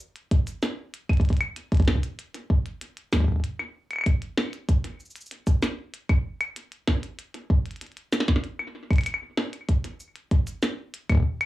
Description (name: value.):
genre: IDM.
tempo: 96 BPM.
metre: 4/4.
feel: straight.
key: none.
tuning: none.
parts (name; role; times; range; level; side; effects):
glitchy drum kit; drums; 0.0-11.5 s; cabasa, claves, hi-hat, snare drum; -28 LUFS; equal; analog delay.
electronic kick drum; drums; 0.3-11.2 s; none; -21 LUFS; equal; none.
room: light reverb.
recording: home recording on cassette, small room ambience.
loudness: -24 LUFS.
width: side -16 dB against mid.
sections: 0.0-11.5 A section.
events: none.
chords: none.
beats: 0.31 | 0.94 1.56 2.19 2.81 | 3.44 4.06 4.69 5.31 | 5.94 6.56 7.19 7.81 | 8.44 9.06 9.69 10.31 | 10.94.